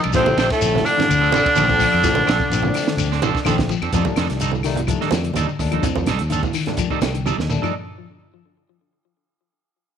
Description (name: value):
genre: afrobeat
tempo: 126 BPM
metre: 4/4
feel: swing 54% on 16ths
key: F mixolydian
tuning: A4 = 438 Hz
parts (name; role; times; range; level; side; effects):
- bright bass trombone; second line; 0.0-3.5 s; A2 to D3; -27 LUFS; left 10 dB; none
- brilliant trumpet; second line; 0.0-3.5 s; A4 to D5; -29 LUFS; right 10 dB; none
- electric guitar at the edge of break-up; arpeggios; 0.0-7.7 s; C3 to F3; -27 LUFS; left 10 dB; wide subtle chorus, tape echo
- electric guitar at the edge of break-up; stabs; 0.0-7.7 s; F3 to A4; -27 LUFS; right 12 dB; none
- compact cocktail drum kit; drums; 0.0-7.7 s; hi-hat, kick drum, ride cymbal, snare drum, toms; -26 LUFS; right 3 dB; none
- claves; percussion; 0.0-7.7 s; none; -33 LUFS; left 14 dB; none
- shekere; percussion; 0.0-7.7 s; none; -29 LUFS; left 7 dB; none
- fingered electric bass; bass; 0.1-7.6 s; A1 to F2; -23 LUFS; equal; none
- congas; percussion; 0.1-7.4 s; none; -26 LUFS; right 9 dB; none
- raspy tenor saxophone; melody; 0.2-3.5 s; A3 to D4; -18 LUFS; right 1 dB; none
- barky tine electric piano; accompaniment; 0.2-7.7 s; D3 to G5; -29 LUFS; left 11 dB; overdrive, lush chorus
room: light reverb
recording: 1960s-style stereo with parts hard left and right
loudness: -16 LUFS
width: side -8 dB against mid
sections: 0.0-3.9 A section; 3.9-7.7 B section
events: tine electric piano fill 6.8-7.7; drum fill 7.3-7.7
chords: 0.1 Bbmaj9; 3.9 F13